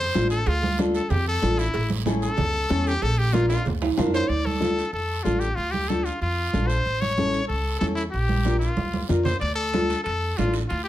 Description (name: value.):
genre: latin, cumbia.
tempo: 187 BPM.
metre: 4/4.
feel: straight.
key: D harmonic minor.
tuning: A4 = 440 Hz.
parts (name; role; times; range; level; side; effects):
brilliant trumpet; melody; 0.0-10.9 s; E4 to D5; -27 LUFS; left 2 dB; plate reverb.
upright bass; bass; 0.0-10.9 s; A1 to F2; -26 LUFS; equal; none.
nylon-string guitar; accompaniment; 0.1-10.6 s; C#4 to F5; -26 LUFS; left 2 dB; none.
cowbell and timbales; percussion; 0.1-4.2, 9.4-10.9 s; none; -31 LUFS; right 5 dB; none.
guiro; percussion; 0.1-10.9 s; none; -40 LUFS; right 8 dB; none.
congas; percussion; 0.2-10.5 s; none; -29 LUFS; right 3 dB; none.
room: moderate large studio reverb, RT60 0.9 s.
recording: none.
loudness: -21 LUFS.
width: side -13 dB against mid.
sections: 0.0-4.3 A section; 4.3-10.9 B section.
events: trumpet solo 0.0-4.3; drum fill 3.5-4.3, 8.8-9.4; nylon-string guitar fill 3.8-4.3.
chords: 0.0 Dm; 1.7 A; 3.0 Bb; 4.3 Dm; 6.9 A; 8.1 Bb; 9.4 Dm.